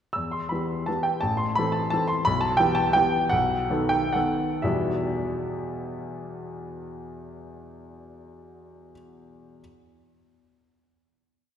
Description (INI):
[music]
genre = classical, piano waltz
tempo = 114-184 BPM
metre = 3/4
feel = rubato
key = E minor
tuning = A4 = 440 Hz
[part]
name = clear grand piano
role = solo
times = 0.1-9.6 s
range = A1 to E6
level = -24 LUFS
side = equal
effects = none
[sound]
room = wet church reverb, RT60 2.7 s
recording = recorded in a church or concert hall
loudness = -22 LUFS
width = side -9 dB against mid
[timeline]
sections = 0.2-4.7 A section; 4.7-7.5 final chord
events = slowing down 1.7-4.7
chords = 0.2 Em; 1.2 Am; 2.2 Em/B; 3.3 B7; 4.7 Em